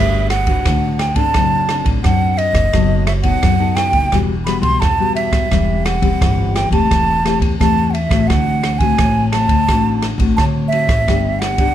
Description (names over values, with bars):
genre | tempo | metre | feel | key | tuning
samba and choro | 86 BPM | 4/4 | straight | unclear | A4 = 443 Hz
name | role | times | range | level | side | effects
breathy concert flute | melody | 0.0-11.7 s | Eb5 to C6 | -18 LUFS | right 3 dB | none
nylon-string guitar | accompaniment | 0.0-11.7 s | A2 to B4 | -19 LUFS | left 7 dB | none
upright bass | bass | 0.0-11.7 s | E1 to D3 | -19 LUFS | right 1 dB | none
open jazz drum kit | drums | 0.3-11.7 s | kick drum, ride cymbal, rim click | -18 LUFS | equal | none
room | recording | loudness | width
moderate large studio reverb, RT60 0.9 s | none | -13 LUFS | side -11 dB against mid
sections
0.0-11.7 A section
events
none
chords
0.0 Gmaj7; 1.4 D7/F#; 2.7 B7/F#; 4.1 Emadd9; 5.5 C/E; 6.9 Am7/E; 8.3 D7; 11.1 G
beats
0.66 1.35 2.04 | 2.74 3.43 4.13 4.82 | 5.52 6.21 6.91 7.60 | 8.30 8.99 9.69 10.38 | 11.08